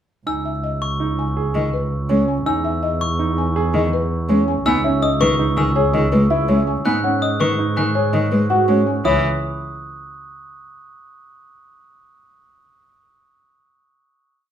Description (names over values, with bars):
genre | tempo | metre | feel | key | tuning
classical, minimalist pattern music | 164 BPM | 6/4 | straight | C# minor | A4 = 442 Hz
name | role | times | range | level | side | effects
buzzing marimba with soft mallets | melody | 0.3-9.2 s | B4 to G#5 | -23 LUFS | left 8 dB | none
clear concert grand piano | arpeggios | 0.3-9.2 s | C#4 to G#4 | -23 LUFS | right 6 dB | none
glockenspiel with hard plastic mallets | arpeggios | 0.3-9.2 s | C#6 to F#6 | -26 LUFS | equal | none
clear double bass | bass | 0.3-9.2 s | C#2 to G#2 | -22 LUFS | right 2 dB | none
clear cello | accompaniment | 1.5-9.2 s | D#3 to B3 | -21 LUFS | equal | none
room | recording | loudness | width
wet large studio reverb, RT60 0.9 s | heard from further back in the room | -16 LUFS | side -9 dB against mid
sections
0.3-9.0 A section; 9.0-11.2 final chord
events
none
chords
0.3 C#5; 2.5 E6; 4.7 C#m7; 6.9 G#m7; 9.0 C#m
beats
| 0.27 0.64 1.00 1.37 1.73 2.10 | 2.46 2.83 3.20 3.56 3.93 4.29 | 4.66 5.03 5.39 5.76 6.12 6.49 | 6.85 7.22 7.59 7.95 8.32 8.68 | 9.05